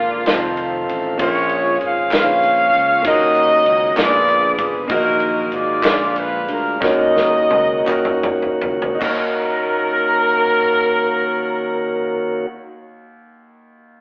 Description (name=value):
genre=slow gospel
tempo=49-65 BPM (dotted quarters)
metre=6/8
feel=straight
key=Eb minor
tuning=A4 = 440 Hz
part: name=warm horn section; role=melody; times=0.0-12.5 s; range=Bb3 to F5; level=-19 LUFS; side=equal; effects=none
part: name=clear concert grand piano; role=accompaniment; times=0.0-14.0 s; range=Eb2 to Eb5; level=-26 LUFS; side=equal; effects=none
part: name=tonewheel organ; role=sustained chords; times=0.0-12.5 s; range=D3 to A4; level=-24 LUFS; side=equal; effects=stopped rotary speaker
part: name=fingered electric bass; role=bass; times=0.0-12.5 s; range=F1 to Eb2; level=-33 LUFS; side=equal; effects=none
part: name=natural country drum kit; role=drums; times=0.3-9.2 s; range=crash cymbal, kick drum, ride cymbal, snare drum, toms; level=-27 LUFS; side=equal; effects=none
part: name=group handclap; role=percussion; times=2.1-9.4 s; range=none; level=-30 LUFS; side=equal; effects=none
room=moderate stone room reverb, RT60 1.4 s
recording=band playing live in one room, telephone sound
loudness=-17 LUFS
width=mono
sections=0.0-9.0 A section; 9.0-13.9 B section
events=slowing down 4.9-9.0; drum fill 6.8-9.0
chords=0.3 F7; 1.2 Bbm7; 3.0 Ebm7; 4.0 Bb7b9; 4.9 Ebm/Bb; 5.8 Bb7; 6.8 Ebm7